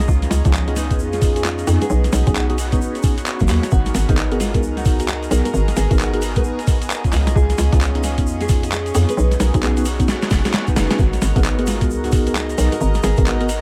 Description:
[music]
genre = UK garage, two-step garage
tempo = 132 BPM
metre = 4/4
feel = swing 63% on 16ths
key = G# dorian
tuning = A4 = 440 Hz
[part]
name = warm analog pad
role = sustained chords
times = 0.0-13.6 s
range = B3 to A#4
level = -33 LUFS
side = equal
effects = chorus, sidechain pumping
[part]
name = hollow knocking FM bass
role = bass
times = 0.0-13.6 s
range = F#1 to E#2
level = -22 LUFS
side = equal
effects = none
[part]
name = tube shaker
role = percussion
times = 0.0-13.6 s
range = none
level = -37 LUFS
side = equal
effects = none
[part]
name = clear studio string section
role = texture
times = 0.0-13.6 s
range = B3 to A#5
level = -33 LUFS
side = equal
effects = sidechain pumping
[part]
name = nylon-string guitar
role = melody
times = 0.1-13.5 s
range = E#3 to B4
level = -28 LUFS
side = equal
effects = tape echo
[part]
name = electronic kick drum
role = drums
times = 0.1-13.2 s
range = none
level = -20 LUFS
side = equal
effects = none
[part]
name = boom bap sampler-style drum kit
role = drums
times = 0.2-13.6 s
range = handclaps, hi-hat, snare drum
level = -27 LUFS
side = equal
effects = dub echo
[part]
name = mellow tine electric piano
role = stabs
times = 0.5-13.5 s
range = B3 to A#4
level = -27 LUFS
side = equal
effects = phaser, tape echo
[sound]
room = light reverb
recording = echo-heavy mix, vinyl crackle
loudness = -18 LUFS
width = mono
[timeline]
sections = 0.0-13.6 A section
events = drum fill 10.1-11.0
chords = 0.0 C#9; 1.9 B69; 3.7 G#m9; 7.1 C#9; 9.2 B69; 11.0 G#m9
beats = | 0.08 0.54 0.99 1.45 | 1.90 2.35 2.81 3.26 | 3.72 4.17 4.63 5.08 | 5.54 5.99 6.45 6.90 | 7.35 7.81 8.26 8.72 | 9.17 9.63 10.08 10.54 | 10.99 11.45 11.90 12.35 | 12.81 13.26

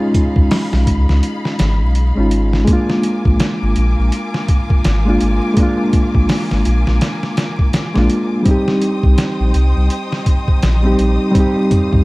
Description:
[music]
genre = trip hop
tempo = 83 BPM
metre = 4/4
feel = swing 60% on 16ths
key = unclear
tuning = A4 = 440 Hz
[part]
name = mellow reed electric piano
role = accompaniment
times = 0.0-12.0 s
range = G3 to G4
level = -17 LUFS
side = equal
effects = harmonic tremolo, tape echo
[part]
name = warm studio string section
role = sustained chords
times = 0.0-12.0 s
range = Eb4 to Eb6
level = -27 LUFS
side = left 1 dB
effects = none
[part]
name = trip hop sampler-style drum kit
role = drums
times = 0.1-12.0 s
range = hi-hat, kick drum, snare drum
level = -16 LUFS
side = equal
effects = studio reverb
[part]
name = soft dub sub bass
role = bass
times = 0.4-12.0 s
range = Ab1 to Db2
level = -14 LUFS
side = equal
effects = none
[sound]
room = little or no reverb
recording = dark, warm production, vinyl crackle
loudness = -13 LUFS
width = side -22 dB against mid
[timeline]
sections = 0.0-12.0 A section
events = none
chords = 0.0 Dbadd9; 2.7 Bb7; 8.5 Cm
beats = 0.50 1.23 1.95 | 2.67 3.40 4.12 4.84 | 5.56 6.29 7.01 7.73 | 8.46 9.18 9.90 10.62 | 11.35

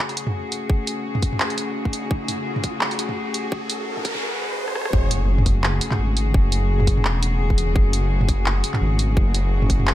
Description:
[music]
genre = half-time drum and bass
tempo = 170 BPM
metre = 4/4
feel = swing 56% on 16ths, half-time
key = F# minor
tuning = A4 = 440 Hz
[part]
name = warm chamber cello section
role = sustained chords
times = 0.0-9.9 s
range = C#3 to G#4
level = -27 LUFS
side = left 2 dB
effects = sidechain pumping
[part]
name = riser, noise sweep and impact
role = sound effects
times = 1.6-6.3 s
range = none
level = -30 LUFS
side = equal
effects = none
[part]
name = drum and bass drum kit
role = drums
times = 0.1-9.9 s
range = handclaps, hi-hat, rim click, toms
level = -24 LUFS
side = right 1 dB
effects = none
[part]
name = electronic kick drum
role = drums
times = 0.7-9.8 s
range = none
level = -20 LUFS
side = equal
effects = none
[part]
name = dark detuned saw bass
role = bass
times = 4.9-9.9 s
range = E1 to G#1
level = -20 LUFS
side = equal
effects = tube saturation
[sound]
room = light reverb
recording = high-pass filter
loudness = -19 LUFS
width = side -14 dB against mid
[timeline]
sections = 0.0-4.9 A section; 4.9-9.9 B section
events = build-up 0.0-4.9; filter sweep 0.0-4.9; riser 1.6-4.9; noise sweep 3.5-4.9; drum fill 4.7; drop 4.9-9.9; impact 4.9-6.3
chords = 0.0 F#madd9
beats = 0.34 | 0.70 1.05 1.40 1.76 | 2.11 2.46 2.81 3.17 | 3.52 3.87 4.23 4.58 | 4.93 5.29 5.64 5.99 | 6.34 6.70 7.05 7.40 | 7.76 8.11 8.46 8.81 | 9.17 9.52 9.87

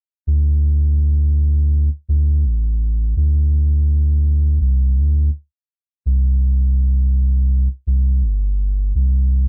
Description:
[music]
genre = trip hop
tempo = 83 BPM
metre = 4/4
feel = swing 58% on 16ths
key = unclear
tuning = A4 = 439 Hz
[part]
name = soft dub sub bass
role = bass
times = 0.3-9.5 s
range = G1 to D2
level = -17 LUFS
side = equal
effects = none
[sound]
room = little or no reverb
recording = dry, gritty hardware recording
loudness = -17 LUFS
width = mono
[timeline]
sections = 0.3-9.5 A section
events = none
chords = none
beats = | 0.28 1.00 1.72 2.45 | 3.17 3.89 4.62 5.34 | 6.06 6.78 7.51 8.23 | 8.95

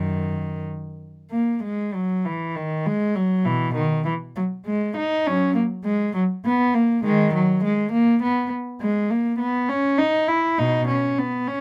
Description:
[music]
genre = classical, baroque-style suite movement for unaccompanied cello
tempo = 67 BPM (dotted quarters)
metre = 6/8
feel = rubato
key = B major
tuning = A4 = 439 Hz
[part]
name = dark cello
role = solo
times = 0.0-11.6 s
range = F#2 to E4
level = -22 LUFS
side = equal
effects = none
[sound]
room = little or no reverb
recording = close, detailed microphones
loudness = -22 LUFS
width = mono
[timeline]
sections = 0.0-1.6 A section; 1.6-11.6 B section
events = none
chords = none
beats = 0.67 | 1.63 2.56 | 3.45 4.36 | 5.26 6.15 | 7.04 7.92 | 8.81 9.69 | 10.57 11.46

